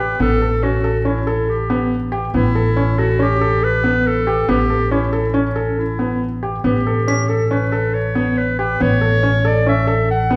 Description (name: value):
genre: contemporary instrumental, chamber music in an uneven meter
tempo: 140 BPM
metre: 5/4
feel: straight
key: A mixolydian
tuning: A4 = 444 Hz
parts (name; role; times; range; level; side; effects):
- bright clarinet; melody; 0.0-10.4 s; C#4 to F#5; -23 LUFS; equal; none
- felt-muted upright piano; arpeggios; 0.0-10.4 s; B3 to A4; -22 LUFS; equal; none
- upright bass; bass; 0.0-10.4 s; A1; -22 LUFS; equal; none
- glockenspiel with hard plastic mallets; texture; 7.1-8.0 s; B6; -32 LUFS; equal; none
room: wet recital hall reverb, RT60 1.5 s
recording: heard from further back in the room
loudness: -17 LUFS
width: mono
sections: 0.0-10.4 A section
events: none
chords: 0.0 Asus2